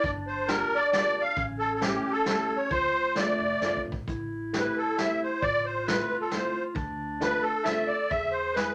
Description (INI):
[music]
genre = musette waltz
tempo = 134 BPM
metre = 3/4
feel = straight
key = D minor, A minor from 4.1 s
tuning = A4 = 438 Hz
[part]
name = musette accordion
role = melody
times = 0.0-8.7 s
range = G4 to F5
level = -29 LUFS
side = equal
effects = none
[part]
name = warm clarinet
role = second line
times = 0.0-8.7 s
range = A3 to A4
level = -37 LUFS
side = equal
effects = none
[part]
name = upright bass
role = bass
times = 0.0-8.7 s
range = F1 to E2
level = -44 LUFS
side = equal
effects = none
[part]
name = vintage brush drum kit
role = drums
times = 0.0-8.7 s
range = hi-hat, kick drum, snare drum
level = -36 LUFS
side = equal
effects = none
[part]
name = clear upright piano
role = accompaniment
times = 0.5-8.7 s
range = G#3 to G#4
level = -38 LUFS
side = equal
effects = none
[sound]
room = wet studio reverb, RT60 0.5 s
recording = none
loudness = -28 LUFS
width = mono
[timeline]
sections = 0.0-4.1 A section; 4.1-8.7 B section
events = drum fill 3.6-4.1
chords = 0.1 Gm7; 1.4 A7; 2.7 Dm7; 4.1 Am7; 5.4 Fmaj7/A; 6.8 Dm7; 8.1 E